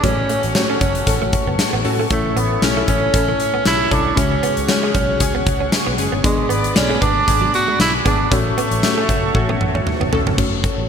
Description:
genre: 1980s-style pop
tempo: 116 BPM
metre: 4/4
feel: swing 55% on 16ths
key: F# minor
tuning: A4 = 443 Hz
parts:
  - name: breathy tenor saxophone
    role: melody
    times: 0.0-9.9 s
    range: G#3 to F#4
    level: -21 LUFS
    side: right 3 dB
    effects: none
  - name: mellow FM electric piano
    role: accompaniment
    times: 0.0-10.9 s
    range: G#2 to E5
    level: -23 LUFS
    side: left 4 dB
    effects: chorus
  - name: phased analog pad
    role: sustained chords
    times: 0.0-10.4 s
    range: F#4 to D6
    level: -26 LUFS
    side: equal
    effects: phaser, chorus
  - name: direct-recorded clean electric guitar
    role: riff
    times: 0.0-10.3 s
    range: F#3 to C#4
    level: -28 LUFS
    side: right 7 dB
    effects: none
  - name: vintage muted fingered electric bass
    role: bass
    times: 0.0-10.9 s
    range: E1 to A2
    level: -24 LUFS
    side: equal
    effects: none
  - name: huge arena drum kit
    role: drums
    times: 0.0-10.8 s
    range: crash cymbal, hi-hat, kick drum, snare drum, tambourine, toms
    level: -19 LUFS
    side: left 1 dB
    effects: none
  - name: funky polysynth comp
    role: stabs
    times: 0.7-10.3 s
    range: B3 to A4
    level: -28 LUFS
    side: left 2 dB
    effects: none
room: moderate lush hall reverb, RT60 2.8 s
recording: bright 1980s-style digital production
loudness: -15 LUFS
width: side -7 dB against mid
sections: 0.0-10.4 A section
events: drum fill 9.3-10.4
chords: 0.0 F#m; 2.1 A; 4.2 C#sus4; 6.2 G#dim; 8.3 F#m

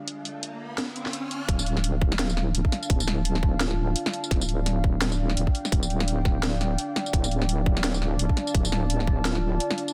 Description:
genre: half-time drum and bass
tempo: 170 BPM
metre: 4/4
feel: swing 58% on 16ths, half-time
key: D minor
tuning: A4 = 435 Hz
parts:
  - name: dark analog pad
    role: sustained chords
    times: 0.0-9.9 s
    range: D4 to A5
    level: -36 LUFS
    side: equal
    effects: chorus, sidechain pumping
  - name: riser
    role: sound effects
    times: 0.0-1.5 s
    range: none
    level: -39 LUFS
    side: equal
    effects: none
  - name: drum and bass drum kit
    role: drums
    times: 0.1-9.9 s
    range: hi-hat, snare drum, tambourine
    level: -32 LUFS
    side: equal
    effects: soft clipping on snare
  - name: deep soft wobble bass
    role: bass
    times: 1.5-9.6 s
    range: D1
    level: -28 LUFS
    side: equal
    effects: chorus
  - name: electronic kick drum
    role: drums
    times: 1.5-9.2 s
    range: none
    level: -26 LUFS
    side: equal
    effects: none
  - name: marimba with medium mallets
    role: melody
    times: 3.6-3.9, 9.3-9.5 s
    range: F4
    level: -39 LUFS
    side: equal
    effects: dub echo
room: light reverb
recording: dense, heavily limited modern master, low-pass filter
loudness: -26 LUFS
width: mono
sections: 0.0-1.5 A section; 1.5-9.9 B section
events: riser 0.0-1.5; filter sweep 0.0-1.5; drop 1.5-9.9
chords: 0.0 Dm

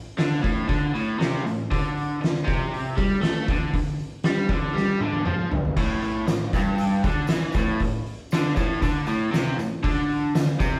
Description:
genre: garage rock duo or trio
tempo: 118 BPM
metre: 4/4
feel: straight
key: unclear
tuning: A4 = 440 Hz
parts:
  - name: overdriven electric guitar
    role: riff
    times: 0.2-10.8 s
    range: G2 to A3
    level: -27 LUFS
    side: equal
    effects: none
  - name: oversized low-tuned drum kit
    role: drums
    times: 0.2-10.7 s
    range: crash cymbal, hi-hat, kick drum, snare drum, toms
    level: -28 LUFS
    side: equal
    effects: none
  - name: tambourine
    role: percussion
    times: 6.3-10.7 s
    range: none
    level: -51 LUFS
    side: equal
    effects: none
room: wet stone room reverb, RT60 1.0 s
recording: band playing live in one room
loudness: -24 LUFS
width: mono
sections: 0.0-10.8 A section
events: drum fill 4.8-5.8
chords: none

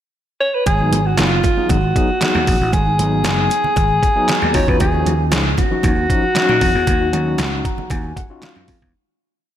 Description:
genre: early-eighties boogie funk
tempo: 116 BPM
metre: 4/4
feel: straight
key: G# dorian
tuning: A4 = 440 Hz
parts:
  - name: warm alto saxophone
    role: melody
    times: 0.4-8.4 s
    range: E#4 to C#5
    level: -18 LUFS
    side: equal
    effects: slapback echo
  - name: vintage slap bass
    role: bass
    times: 0.7-8.9 s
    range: F#1 to A#2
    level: -19 LUFS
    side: equal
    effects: none
  - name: detuned 8-bit digital drum machine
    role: drums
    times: 0.7-8.9 s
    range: handclaps, hi-hat, kick drum, snare drum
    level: -19 LUFS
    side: equal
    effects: none
  - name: congas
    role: percussion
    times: 0.7-8.7 s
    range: none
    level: -29 LUFS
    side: right 6 dB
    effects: none
  - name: barky tine electric piano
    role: accompaniment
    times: 0.8-8.9 s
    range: E#3 to A#5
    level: -23 LUFS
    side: left 3 dB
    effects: overdrive, medium tremolo, tube saturation, slapback echo
room: moderate lush hall reverb, RT60 2.3 s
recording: big arena sound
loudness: -14 LUFS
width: side -10 dB against mid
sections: 0.0-0.7 pickup bar; 0.7-8.9 verse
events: fade-out 6.9-8.9; tine electric piano fill 7.4-8.9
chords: 0.0 N.C.; 0.7 G#m7; 4.5 D#m9

